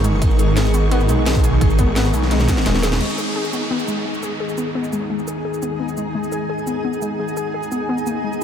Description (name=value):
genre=dark technical drum and bass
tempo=172 BPM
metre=4/4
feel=straight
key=G# minor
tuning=A4 = 443 Hz
part: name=dark analog pad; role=sustained chords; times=0.0-8.4 s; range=D#3 to F#5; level=-27 LUFS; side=equal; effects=chorus, phaser, sidechain pumping
part: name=warbly dusty pluck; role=arpeggios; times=0.0-8.4 s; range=G#3 to G#4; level=-24 LUFS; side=left 3 dB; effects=chorus, sidechain pumping, tape echo
part: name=snarling distorted saw bass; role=bass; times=0.0-3.0 s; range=D#1 to B1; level=-18 LUFS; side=equal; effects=distortion, overdrive, sidechain pumping
part: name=drum and bass drum kit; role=drums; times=0.0-8.4 s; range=cabasa, crash cymbal, hi-hat, ride cymbal, rim click, snare drum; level=-26 LUFS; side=equal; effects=none
part: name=granular cloud pad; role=texture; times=0.0-8.4 s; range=D#4 to C#6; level=-25 LUFS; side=right 1 dB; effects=built-in reverb, lush chorus, sidechain pumping
part: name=electronic kick drum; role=drums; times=0.2-2.6 s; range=none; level=-18 LUFS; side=equal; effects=none
part: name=downlifter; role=sound effects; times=3.0-5.8 s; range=none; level=-30 LUFS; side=right 1 dB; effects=none
room=moderate huge ambient reverb, RT60 4.4 s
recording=dreamy mix soaked in reverb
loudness=-17 LUFS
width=side -8 dB against mid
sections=0.0-3.0 A section; 3.0-8.4 B section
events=drop 0.0-3.0; drum fill 2.3-3.0; band accent 2.9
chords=0.0 G#5